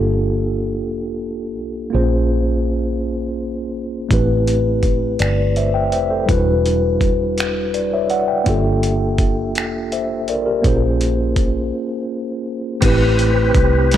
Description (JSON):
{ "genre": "slow six-eight R&B", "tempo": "55 BPM (dotted quarters)", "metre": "6/8", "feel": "straight", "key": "unclear", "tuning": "A4 = 440 Hz", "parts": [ { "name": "mellow tine electric piano", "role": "accompaniment", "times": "0.0-14.0 s", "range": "G3 to G5", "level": "-19 LUFS", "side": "left 1 dB", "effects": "medium stereo tremolo" }, { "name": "vintage muted fingered electric bass", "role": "bass", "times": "0.0-14.0 s", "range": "E1 to C2", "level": "-20 LUFS", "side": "right 1 dB", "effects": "none" }, { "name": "dusty soul sampler-style drum kit", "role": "drums", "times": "4.1-14.0 s", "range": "crash cymbal, finger snaps, hi-hat, kick drum, snare drum", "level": "-20 LUFS", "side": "equal", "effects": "overdrive" }, { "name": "tonewheel organ", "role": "sustained chords", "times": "12.8-14.0 s", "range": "C4 to B4", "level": "-21 LUFS", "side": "left 1 dB", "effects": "chorus vibrato, fast rotary speaker" } ], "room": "moderate plate reverb, RT60 2.4 s", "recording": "dreamy mix soaked in reverb", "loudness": "-16 LUFS", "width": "side -11 dB against mid", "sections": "0.0-12.8 A section; 12.8-14.0 B section", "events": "break 11.7-12.8", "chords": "0.0 Gm9; 1.9 Bbm9; 4.1 Am9; 6.3 Em9; 8.5 Gm9; 10.6 Bbm9; 12.8 Am9", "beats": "0.83 | 1.92 3.01 | 4.10 5.19 | 6.28 7.37 | 8.46 9.56 | 10.65 11.74 | 12.83 13.92" }